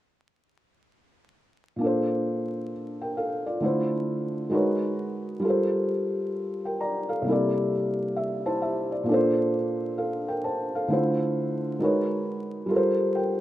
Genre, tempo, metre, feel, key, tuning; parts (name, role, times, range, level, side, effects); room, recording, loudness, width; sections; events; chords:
hip hop; 66 BPM; 4/4; swing 65% on 16ths; A4 = 440 Hz
felt-muted upright piano; accompaniment; 1.8-13.4 s; Bb2 to Bb5; -24 LUFS; equal
moderate lush hall reverb, RT60 2.2 s; rough home demo mix, vinyl crackle; -24 LUFS; side -14 dB against mid
1.8-13.4 A section
felt piano fill 7.7-9.1
1.8 Bbmaj7; 3.6 Dm7; 4.5 Abm11; 5.4 Gm11; 7.3 C13; 9.1 Bbmaj7; 10.9 Dm7; 11.8 Abm11; 12.7 Gm11